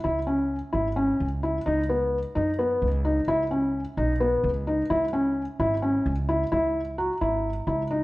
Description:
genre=contemporary instrumental, chamber music in an uneven meter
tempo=260 BPM (eighths)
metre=7/8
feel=straight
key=C# dorian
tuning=A4 = 436 Hz
part: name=felt-muted upright piano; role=arpeggios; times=0.0-8.0 s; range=B3 to F#4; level=-24 LUFS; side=left 1 dB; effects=none
part: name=upright bass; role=bass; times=0.0-8.0 s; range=G#1 to F#2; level=-29 LUFS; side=right 1 dB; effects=none
part: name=celesta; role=texture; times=7.0-8.0 s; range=A#5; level=-34 LUFS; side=right 4 dB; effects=none
room=moderate recital hall reverb, RT60 1.3 s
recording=worn, warbling old tape, cassette tape, warbly pitch drift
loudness=-23 LUFS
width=side -19 dB against mid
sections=0.0-6.5 A section; 6.5-8.0 B section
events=none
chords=0.0 C#m; 1.7 Badd9/C#; 3.3 N.C.; 4.9 C#m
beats=| 0.05 0.28 0.51 0.74 0.97 1.21 1.44 | 1.67 1.90 2.13 2.36 2.59 2.82 3.05 | 3.29 3.52 3.75 3.98 4.21 4.44 4.67 | 4.90 5.13 5.37 5.60 5.83 6.06 6.29 | 6.52 6.75 6.98 7.21 7.45 7.68 7.91

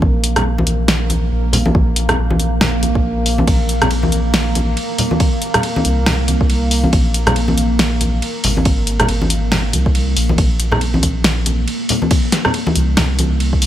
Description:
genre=deep dubstep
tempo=139 BPM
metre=4/4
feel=swing 58% on 16ths, half-time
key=unclear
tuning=A4 = 437 Hz
part: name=deep dark ambient pad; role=sustained chords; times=0.0-13.7 s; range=Bb3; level=-22 LUFS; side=right 1 dB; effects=chorus, built-in reverb
part: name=soft dub sub bass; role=bass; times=0.0-13.7 s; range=Ab1 to C2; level=-18 LUFS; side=equal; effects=none
part: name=electronic kick drum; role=drums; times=0.0-13.6 s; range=none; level=-16 LUFS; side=equal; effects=none
part: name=deep house drum kit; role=drums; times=0.2-13.7 s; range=hi-hat, ride cymbal, rim click, snare drum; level=-19 LUFS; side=equal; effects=none
part: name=congas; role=percussion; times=0.4-13.3 s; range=none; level=-21 LUFS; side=left 1 dB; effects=dub echo
room=light reverb, digital ambience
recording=none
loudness=-13 LUFS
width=side -12 dB against mid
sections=0.0-10.4 A section; 10.4-13.7 A section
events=drop 0.0-10.4, 10.4-13.7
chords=0.0 Abadd9; 10.4 N.C.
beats=| 0.02 0.45 0.89 1.32 | 1.75 2.18 2.61 3.04 | 3.48 3.91 4.34 4.77 | 5.20 5.63 6.07 6.50 | 6.93 7.36 7.79 8.22 | 8.65 9.09 9.52 9.95 | 10.38 10.81 11.24 11.68 | 12.11 12.54 12.97 13.40

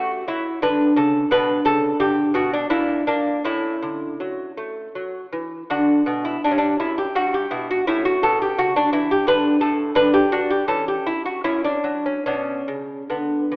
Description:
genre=classical, baroque-style dance for lute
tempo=70-88 BPM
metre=3/4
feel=rubato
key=D major, B minor from 10.0 s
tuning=A4 = 440 Hz
part: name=lute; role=solo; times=0.0-13.6 s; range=F#2 to B4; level=-18 LUFS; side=equal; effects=none
room=moderate scoring stage reverb, RT60 1.9 s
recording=recorded in a church or concert hall, AM radio sound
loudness=-18 LUFS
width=side -26 dB against mid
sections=0.0-13.6 A section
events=none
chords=0.0 A; 0.6 D5; 1.3 Bm9; 2.7 Bb; 3.5 A; 5.7 D; 7.9 A; 9.3 D5; 10.0 N.C.; 10.7 Em69; 11.4 F#5; 12.3 Bm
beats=0.63 | 1.32 2.01 2.73 | 3.46 4.21 4.96 | 5.70 6.43 7.16 | 7.88 8.59 9.28 | 9.97 10.68 11.45 | 12.27 13.10

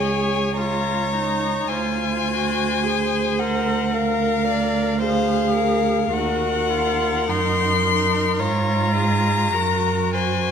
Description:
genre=classical, slow romantic movement for string quartet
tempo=48-56 BPM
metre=4/4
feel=rubato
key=Db major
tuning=A4 = 435 Hz
part: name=warm violin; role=melody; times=0.0-10.5 s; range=F5 to C6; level=-23 LUFS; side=left 7 dB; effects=none
part: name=clear violin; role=second line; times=0.0-10.5 s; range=Ab4 to D5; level=-26 LUFS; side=left 2 dB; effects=none
part: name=rich viola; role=accompaniment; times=0.0-10.5 s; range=Eb4 to Bb4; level=-26 LUFS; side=right 3 dB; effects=none
part: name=rich cello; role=bass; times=0.0-10.5 s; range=Db2 to Ab2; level=-23 LUFS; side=right 5 dB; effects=none
room=wet recital hall reverb, RT60 1.7 s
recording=none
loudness=-18 LUFS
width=side -7 dB against mid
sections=0.0-10.5 A section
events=none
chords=0.0 Db; 1.7 Bb7/D; 6.1 Ebm; 8.4 Db/Ab; 9.5 Ab7/Gb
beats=0.58 | 1.71 2.83 3.94 5.01 | 6.11 7.28 8.39 9.54

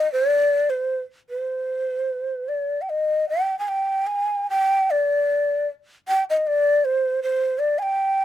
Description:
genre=japanese traditional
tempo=76 BPM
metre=2/4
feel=uneven beats, rubato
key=G miyako bushi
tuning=A4 = 435 Hz
part: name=breathy mellow shakuhachi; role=solo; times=0.0-8.2 s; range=C5 to Ab5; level=-20 LUFS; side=equal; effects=none
room=little or no reverb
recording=close, detailed microphones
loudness=-20 LUFS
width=side -11 dB against mid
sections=0.0-8.2 A section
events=none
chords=none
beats=| 0.10 0.87 | 1.66 2.47 | 3.28 4.08 | 4.88 5.66 | 6.42 7.18 | 7.96

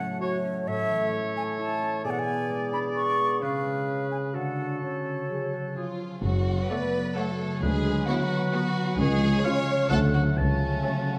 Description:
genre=cinematic, playful, whimsical film cue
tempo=131 BPM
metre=3/4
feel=straight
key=F# minor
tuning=A4 = 436 Hz
part: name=mellow silver concert flute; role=second line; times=0.0-11.2 s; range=C#5 to C#6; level=-33 LUFS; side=equal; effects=none
part: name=dark French horn section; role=sustained chords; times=0.0-11.2 s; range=C#3 to G#4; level=-35 LUFS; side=equal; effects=none
part: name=concert harp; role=arpeggios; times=0.0-11.2 s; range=F#2 to C#5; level=-34 LUFS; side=equal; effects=none
part: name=clear oboe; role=second line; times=0.2-11.2 s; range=G#4 to A5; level=-37 LUFS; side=equal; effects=none
part: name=mellow clarinet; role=second line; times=0.2-11.0 s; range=G#3 to A4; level=-37 LUFS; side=equal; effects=none
part: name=rich chamber violin section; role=second line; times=5.8-11.2 s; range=C#4 to C#5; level=-35 LUFS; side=equal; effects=none
part: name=mellow tuba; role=bass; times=6.2-10.7 s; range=F#1 to D2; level=-34 LUFS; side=equal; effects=none
part: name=rich studio double bass section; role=bass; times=6.2-10.7 s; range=F#1 to D2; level=-32 LUFS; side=equal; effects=none
part: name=warm studio cello section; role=bass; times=6.2-10.7 s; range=C#2 to F#2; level=-34 LUFS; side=equal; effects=none
part: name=warm studio violin section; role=melody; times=6.7-11.2 s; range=C#5 to F#5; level=-41 LUFS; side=equal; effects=none
part: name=rich studio viola section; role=accompaniment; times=6.7-11.2 s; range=F#3 to A4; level=-40 LUFS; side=equal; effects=none
room=wet concert hall reverb, RT60 2.0 s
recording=none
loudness=-27 LUFS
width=mono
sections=0.0-6.2 A section; 6.2-11.2 B section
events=none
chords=0.0 F#m/A; 0.7 A; 2.0 G#dim/B; 3.4 C#7; 4.3 D; 4.8 F#m/C#; 5.8 C#; 6.2 F#m; 7.6 Bm/D; 9.0 C#; 9.9 D; 10.4 F#m/C#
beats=0.22 | 0.67 1.13 1.59 | 2.05 2.50 2.96 | 3.42 3.88 4.34 | 4.82 5.29 5.77 | 6.24 6.70 7.16 | 7.62 8.08 8.53 | 8.99 9.45 9.91 | 10.38 10.85

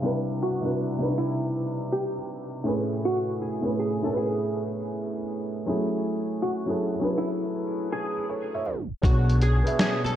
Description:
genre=lo-fi hip hop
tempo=80 BPM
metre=4/4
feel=swing 64% on 16ths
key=B dorian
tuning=A4 = 439 Hz
part: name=felt-muted upright piano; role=accompaniment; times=0.0-10.2 s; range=A2 to F#5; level=-27 LUFS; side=equal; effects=none
part: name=archtop guitar, miked and amplified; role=melody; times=0.4-10.2 s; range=E4 to A4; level=-30 LUFS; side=equal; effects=ensemble chorus, diffuse ambient delay
part: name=upright bass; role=bass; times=9.0-10.1 s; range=B1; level=-23 LUFS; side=equal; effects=none
part: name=lo-fi sampler-style drum kit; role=drums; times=9.0-10.2 s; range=hi-hat, kick drum, snare drum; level=-23 LUFS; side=equal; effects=none
room=moderate plate reverb, RT60 1.9 s, studio reverb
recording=dreamy mix soaked in reverb, cassette tape, low-pass filter, tape stop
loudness=-24 LUFS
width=side -11 dB against mid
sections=0.0-9.0 A section; 9.0-10.2 B section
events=filter sweep 0.0-9.0; tape stop 8.7-9.0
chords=0.0 Cmaj9; 2.7 Amaj9; 5.7 F#m9; 9.0 Bm69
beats=| 0.03 0.78 1.53 2.28 | 3.03 3.78 4.53 5.28 | 6.03 6.78 7.53 8.28 | 9.03 9.78

